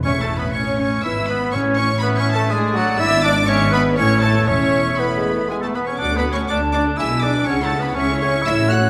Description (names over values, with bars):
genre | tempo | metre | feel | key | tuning
quick classical-period movement for symphony orchestra | 122 BPM | 3/4 | straight | A major | A4 = 439 Hz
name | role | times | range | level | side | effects
warm chamber violin section | melody | 0.0-8.9 s | F#5 to F#6 | -27 LUFS | equal | none
mellow cor anglais | second line | 0.0-8.9 s | F#3 to F#4 | -27 LUFS | equal | none
warm chamber viola section | accompaniment | 0.0-8.9 s | E3 to C#5 | -29 LUFS | equal | none
dark French horn section | sustained chords | 0.0-8.8 s | F#3 to F#4 | -27 LUFS | equal | none
bright clarinet | second line | 0.1-8.9 s | F#4 to F#5 | -28 LUFS | equal | none
silver concert flute | second line | 0.1-8.9 s | B4 to A5 | -28 LUFS | equal | none
warm chamber violin section | second line | 0.1-8.8 s | F#4 to F#5 | -32 LUFS | equal | none
dark chamber cello section | bass | 0.1-8.9 s | D2 to C#3 | -28 LUFS | equal | none
dark chamber double bass section | bass | 0.1-8.9 s | E1 to D2 | -27 LUFS | equal | none
timpani | percussion | 0.1-2.2 s | A2 | -30 LUFS | equal | none
dark bassoon | accompaniment | 5.0-6.0 s | G#3 to B3 | -30 LUFS | equal | none
room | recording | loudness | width
wet concert hall reverb, RT60 2.1 s | none | -18 LUFS | mono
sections
0.1-8.9 A section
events
none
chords
0.1 A; 1.0 E/G#; 1.5 A; 2.5 D/A; 3.0 E7/G#; 4.0 A; 4.5 Esus4; 6.0 D; 7.0 G#dim/B; 7.5 C#m